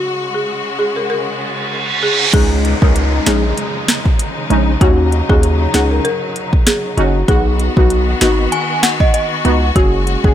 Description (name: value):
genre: dancehall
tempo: 97 BPM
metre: 4/4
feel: swing 56% on 16ths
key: unclear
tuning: A4 = 440 Hz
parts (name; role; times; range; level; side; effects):
- clear studio string section; sustained chords; 0.0-10.3 s; Db3 to F#4; -22 LUFS; left 2 dB; sidechain pumping
- folk marimba with medium mallets; melody; 0.3-10.3 s; Gb4 to Bb4; -20 LUFS; equal; tape echo
- reverse cymbal and downlifter; sound effects; 1.4-7.3 s; none; -21 LUFS; right 3 dB; none
- synth brass stab; accompaniment; 2.3-10.3 s; Ab3 to Ab4; -19 LUFS; left 1 dB; chorus, sidechain pumping
- hard-hitting 808-style bass; bass; 2.3-10.3 s; Gb1 to Eb2; -16 LUFS; equal; none
- afro-pop drum kit; drums; 2.3-10.3 s; crash cymbal, hi-hat, kick drum, snare drum; -14 LUFS; equal; none
- synth chime; second line; 8.5-9.6 s; D#5 to Ab5; -19 LUFS; right 1 dB; ensemble chorus, tape echo
room: little or no reverb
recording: none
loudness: -12 LUFS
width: side -10 dB against mid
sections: 0.0-2.3 A section; 2.3-10.3 B section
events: break 0.0-2.3; reverse cymbal 1.4-2.3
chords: 0.0 Gbsus2; 2.3 Dbsus2; 4.8 Ebm7; 7.3 B; 9.8 Gbsus2